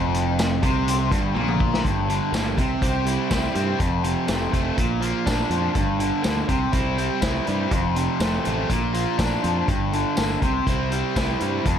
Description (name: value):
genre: classic rock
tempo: 123 BPM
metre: 4/4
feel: straight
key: G minor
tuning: A4 = 440 Hz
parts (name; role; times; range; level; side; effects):
- overdriven electric guitar; riff; 0.0-11.8 s; F2 to G4; -26 LUFS; left 11 dB; spring reverb
- overdriven electric guitar; riff; 0.0-11.8 s; F2 to E4; -26 LUFS; right 11 dB; none
- growling fingered electric bass; bass; 0.0-11.8 s; F1 to G2; -27 LUFS; equal; overdrive
- vintage drum kit; drums; 0.1-11.8 s; hi-hat, kick drum, snare drum, tambourine, toms; -26 LUFS; equal; none
room: light reverb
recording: none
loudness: -20 LUFS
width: side -8 dB against mid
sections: 0.0-1.9 A section; 1.9-11.8 B section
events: drum fill 1.4-1.9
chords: 0.0 Gm; 2.6 C; 3.8 F; 4.8 Bb; 5.8 Gm; 6.5 C; 7.7 F; 8.7 Bb; 9.7 Gm; 10.4 C